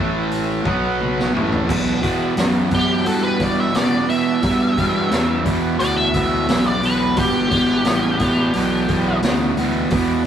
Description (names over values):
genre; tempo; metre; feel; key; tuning
blues rock power trio and southern rock; 87 BPM; 4/4; straight; E minor; A4 = 440 Hz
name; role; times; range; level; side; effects
octave-fuzz lead guitar; melody; 0.0-9.2 s; G4 to E5; -21 LUFS; equal; wah, distortion, slapback echo
overdriven tonewheel organ; sustained chords; 0.0-10.2 s; A3 to F#5; -33 LUFS; right 2 dB; none
fuzz guitar; riff; 0.0-10.2 s; E2 to B3; -19 LUFS; right 1 dB; distortion
fuzz fingered electric bass; bass; 0.0-10.3 s; G1 to B2; -24 LUFS; equal; overdrive
raw garage drum kit; drums; 0.3-10.1 s; crash cymbal, hi-hat, kick drum, snare drum, toms; -23 LUFS; equal; none
room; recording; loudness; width
moderate small room reverb, RT60 0.5 s; rough rehearsal-room recording; -16 LUFS; side -9 dB against mid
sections
0.0-1.7 A section; 1.7-10.3 B section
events
drum fill 1.0-1.7; lead electric guitar solo 1.7-10.3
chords
0.0 A5; 0.6 B5; 1.3 Em; 1.7 Em7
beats
0.30 0.99 | 1.68 2.37 3.06 3.75 | 4.44 5.12 5.81 6.50 | 7.18 7.87 8.55 9.23 | 9.91